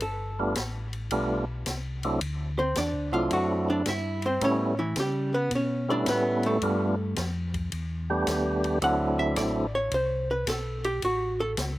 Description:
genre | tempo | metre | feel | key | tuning
soul jazz organ trio | 109 BPM | 4/4 | swing 67% on 8ths | D mixolydian | A4 = 437 Hz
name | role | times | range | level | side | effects
archtop guitar, miked and amplified | accompaniment | 0.0-11.5 s | E3 to F#5 | -28 LUFS | right 1 dB | slapback echo
mellow tonewheel organ | bass | 0.0-11.8 s | G1 to C#3 | -32 LUFS | left 1 dB | slow rotary speaker
open jazz drum kit | drums | 0.0-11.8 s | hi-hat, kick drum, ride cymbal, snare drum | -36 LUFS | left 1 dB | none
percussive tonewheel organ | melody | 0.4-9.7 s | F#3 to G4 | -27 LUFS | right 1 dB | slow rotary speaker
room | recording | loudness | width
little or no reverb | recorded outdoors, with no room sound | -25 LUFS | side -16 dB against mid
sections
0.0-11.8 A section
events
hollow-body jazz guitar solo 0.0-11.8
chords
0.0 G7; 2.2 D7; 4.4 A7; 6.6 G7; 8.8 D7; 11.0 A

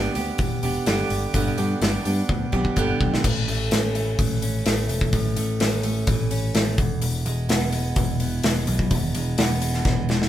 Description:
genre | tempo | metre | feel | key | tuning
quiet-loud alternative rock | 127 BPM | 4/4 | straight | A major | A4 = 440 Hz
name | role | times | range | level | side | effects
picked steel-string acoustic guitar | arpeggios | 0.0-10.3 s | E2 to G4 | -27 LUFS | right 3 dB | none
picked electric bass | bass | 0.0-10.3 s | E1 to G2 | -25 LUFS | equal | none
big rock drum kit | drums | 0.2-10.3 s | crash cymbal, hi-hat, kick drum, snare drum | -23 LUFS | left 1 dB | none
room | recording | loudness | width
light reverb | band playing live in one room | -20 LUFS | side -12 dB against mid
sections
0.0-3.2 A section; 3.2-10.3 B section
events
drum fill 2.3-3.2, 9.9-10.3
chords
0.0 G; 3.2 A; 6.8 E

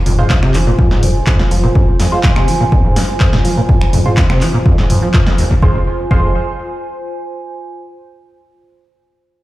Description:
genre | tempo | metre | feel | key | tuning
acid house | 124 BPM | 4/4 | straight | F minor pentatonic | A4 = 442 Hz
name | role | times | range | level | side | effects
warbly tape-like pad | texture | 0.0-7.5 s | F4 to Ab5 | -22 LUFS | right 1 dB | chorus, built-in reverb, sidechain pumping
liquid acid bass | riff | 0.1-6.3 s | F1 to F3 | -16 LUFS | equal | overdrive, wide subtle chorus, sidechain pumping, digital delay
round analog bass | bass | 0.1-1.7, 5.6-6.3 s | F1 | -16 LUFS | equal | tube saturation, sidechain pumping
punchy analog drum machine | drums | 0.1-5.5 s | finger snaps, handclaps, hi-hat, snare drum, toms | -18 LUFS | equal | none
band-passed chord stab | stabs | 0.2-6.3 s | Ab3 to C5 | -22 LUFS | right 1 dB | phaser, digital delay
electronic kick drum | drums | 0.3-6.2 s | none | -13 LUFS | equal | none
room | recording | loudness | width
light reverb, digital ambience | played on a big sound system in a bare room, large studio reverb | -10 LUFS | side -16 dB against mid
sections
0.0-5.6 A section; 5.6-7.6 B section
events
none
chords
0.0 Fm

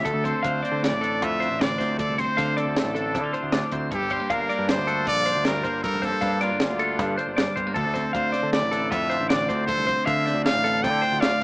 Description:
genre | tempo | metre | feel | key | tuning
math rock and midwest emo | 156 BPM | 5/4 | straight | D minor | A4 = 439 Hz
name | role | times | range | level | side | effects
twelve-string electric guitar | accompaniment | 0.0-11.4 s | D2 to F4 | -29 LUFS | right 1 dB | none
twelve-string electric guitar | arpeggios | 0.0-11.4 s | A4 to F5 | -27 LUFS | left 1 dB | spring reverb
growling picked electric bass | bass | 0.0-11.4 s | F1 to D3 | -30 LUFS | equal | overdrive
brilliant trumpet | melody | 0.1-11.4 s | F4 to G5 | -26 LUFS | equal | none
compact cocktail drum kit | drums | 0.1-11.4 s | hi-hat, kick drum, snare drum | -27 LUFS | equal | none
room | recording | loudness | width
light reverb | rough home demo mix, small speaker sound | -21 LUFS | side -26 dB against mid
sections
0.1-11.4 A section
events
none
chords
0.1 Dm7; 3.9 Gm9; 7.8 Dm7

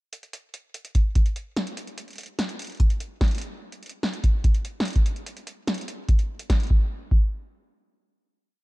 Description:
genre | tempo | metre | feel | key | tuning
IDM | 146 BPM | 4/4 | straight | none | none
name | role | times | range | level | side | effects
electro analog drum machine | drums | 0.1-6.7 s | hi-hat, snare drum | -31 LUFS | equal | none
electronic kick drum | drums | 0.9-7.2 s | none | -20 LUFS | equal | none
room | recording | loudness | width
little or no reverb | dark, warm production | -22 LUFS | side -21 dB against mid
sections
0.1-6.7 groove; 6.7-8.6 final hit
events
none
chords
none

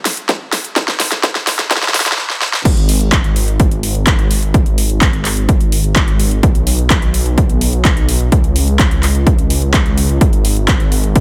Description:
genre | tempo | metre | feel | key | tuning
EDM, festival progressive house | 127 BPM | 4/4 | straight | G# minor | A4 = 436 Hz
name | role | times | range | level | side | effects
big-room dance drum kit | drums | 0.1-11.2 s | crash cymbal, handclaps, hi-hat, snare drum | -19 LUFS | equal | overdrive, high-pass filter on snare, high-pass filter on hats, high-pass filter on cymbals
electronic kick drum | drums | 0.3-11.2 s | none | -16 LUFS | equal | overdrive, high-pass filter on kick, high-pass filter on room
detuned saw bass | bass | 2.7-11.2 s | G#1 to C#2 | -18 LUFS | equal | chorus, sidechain pumping
room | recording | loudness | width
digital ambience | high-pass filter | -14 LUFS | mono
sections
0.0-2.7 A section; 2.7-11.2 B section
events
build-up 0.0-2.7; drum fill 0.0-2.2, 2.2-2.7; stop 2.2-2.7; drop 2.7-11.2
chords
none

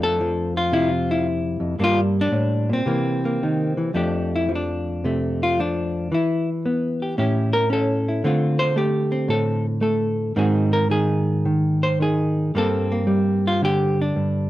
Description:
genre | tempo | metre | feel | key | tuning
solo jazz | 112 BPM | 4/4 | swing 68% on 8ths, rubato | F major | A4 = 440 Hz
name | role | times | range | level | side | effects
hollow-body jazz guitar | solo | 0.0-14.5 s | F2 to C5 | -19 LUFS | equal | none
room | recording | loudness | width
light reverb | dark, warm production | -19 LUFS | side -15 dB against mid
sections
0.0-4.0 A section; 4.0-14.5 B section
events
hollow-body jazz guitar solo 4.0-14.5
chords
0.0 F6; 1.8 Gm; 2.9 C7#9; 4.0 F69; 6.1 Em; 7.2 A7; 8.2 Dm7; 10.4 Ab7; 12.5 Gmadd9

